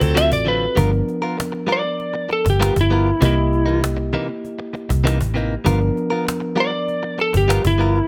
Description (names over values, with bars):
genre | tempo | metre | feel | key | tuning
straight-eighth soul blues | 98 BPM | 4/4 | straight | unclear | A4 = 441 Hz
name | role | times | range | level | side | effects
lightly driven lead guitar | melody | 0.0-8.1 s | E4 to E5 | -22 LUFS | equal | none
reed electric piano | accompaniment | 0.0-8.1 s | F3 to D#5 | -28 LUFS | equal | none
direct-recorded clean electric guitar | stabs | 0.0-8.0 s | C3 to A#4 | -26 LUFS | equal | none
vintage muted fingered electric bass | bass | 0.0-8.0 s | G1 to D2 | -21 LUFS | equal | none
cajon | drums | 0.0-8.0 s | none | -28 LUFS | equal | none
room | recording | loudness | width
small room reverb | none | -19 LUFS | mono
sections
0.8-8.1 A section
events
none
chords
0.0 D7#9; 0.8 G7#9; 3.2 C7#9; 5.7 G7#9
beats
0.16 | 0.77 1.38 1.99 2.60 | 3.21 3.82 4.43 5.05 | 5.66 6.27 6.88 7.49